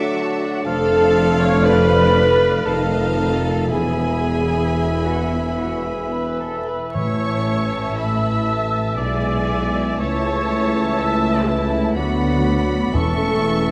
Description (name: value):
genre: classical, slow romantic movement for symphony orchestra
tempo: 55-62 BPM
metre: 3/4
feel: rubato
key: A major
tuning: A4 = 439 Hz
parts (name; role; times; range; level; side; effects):
- warm chamber violin section; melody; 0.0-13.7 s; D5 to C#6; -33 LUFS; equal; none
- dark clarinet; second line; 0.0-13.7 s; G#3 to Eb4; -32 LUFS; equal; none
- hollow concert flute; second line; 0.0-13.7 s; E5 to E6; -30 LUFS; equal; none
- rich symphonic violin section; second line; 0.0-13.7 s; D5 to D6; -33 LUFS; equal; none
- warm oboe; second line; 0.0-13.7 s; D5 to F5; -32 LUFS; equal; none
- mellow bassoon; accompaniment; 0.0-13.7 s; Eb3 to F#3; -31 LUFS; equal; none
- rich symphonic viola section; accompaniment; 0.0-13.7 s; E4 to E5; -26 LUFS; equal; none
- clear trombone section; sustained chords; 0.0-13.7 s; D3 to B3; -30 LUFS; equal; none
- dark French horn section; sustained chords; 0.0-13.7 s; A3 to A4; -28 LUFS; equal; none
- clear tuba; bass; 0.7-13.7 s; E1 to D2; -31 LUFS; equal; none
- rich symphonic cello section; bass; 0.7-13.7 s; C#2 to B2; -29 LUFS; equal; none
- rich symphonic double bass section; bass; 0.7-13.7 s; E1 to D2; -27 LUFS; equal; none
- timpani; percussion; 6.9-13.7 s; E2 to A2; -28 LUFS; equal; none
room: wet scoring stage reverb, RT60 1.5 s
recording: vinyl crackle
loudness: -19 LUFS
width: mono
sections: 0.0-13.7 A section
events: none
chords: 0.0 D; 0.7 Dm/F; 2.7 F7; 3.7 E; 6.9 A; 9.0 E7/B; 10.0 A/C#; 12.0 Bm/D; 12.9 A/E